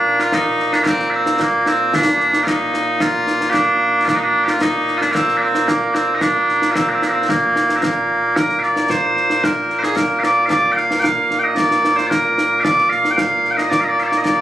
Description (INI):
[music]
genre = scottish traditional, Scottish pipe music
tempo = 112 BPM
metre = 4/4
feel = straight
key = Bb major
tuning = A4 = 440 Hz
[part]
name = loud bright bagpipes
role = melody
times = 0.0-14.4 s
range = Bb2 to G5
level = -14 LUFS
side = right 1 dB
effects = none
[part]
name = concert snare drum and concert bass drum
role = drums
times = 0.2-14.4 s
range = none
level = -23 LUFS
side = left 1 dB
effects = none
[sound]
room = light reverb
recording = recorded on a phone in the room, club ambience, compression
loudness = -14 LUFS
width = side -12 dB against mid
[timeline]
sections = 0.0-8.4 A section; 8.4-14.4 B section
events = none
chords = none